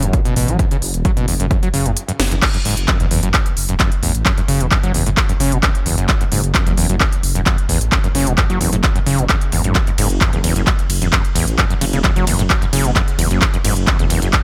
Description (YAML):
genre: driving peak-time techno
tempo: 131 BPM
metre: 4/4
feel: straight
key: F# minor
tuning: A4 = 439 Hz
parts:
  - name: overdriven acid bass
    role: riff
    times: 0.0-14.4 s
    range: E2 to F#3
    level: -23 LUFS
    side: equal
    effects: distortion, subtle chorus, sidechain pumping, delay
  - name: dark detuned saw bass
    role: bass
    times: 0.0-14.3 s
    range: E1 to A1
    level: -22 LUFS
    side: equal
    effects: sidechain pumping
  - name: techno drum kit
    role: drums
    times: 0.0-14.4 s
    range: crash cymbal, handclaps, hi-hat, ride cymbal, snare drum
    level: -22 LUFS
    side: equal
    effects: sidechain pumping on hats, sidechain pumping on cymbals
  - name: electronic kick drum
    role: drums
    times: 0.1-14.4 s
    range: none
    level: -20 LUFS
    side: equal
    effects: none
room: little or no reverb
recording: none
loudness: -16 LUFS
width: mono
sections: 0.0-2.4 A section; 2.4-14.4 B section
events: kick drops out 2.0-2.4; drum fill 2.2; band accent 2.2; drop 2.4-14.4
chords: none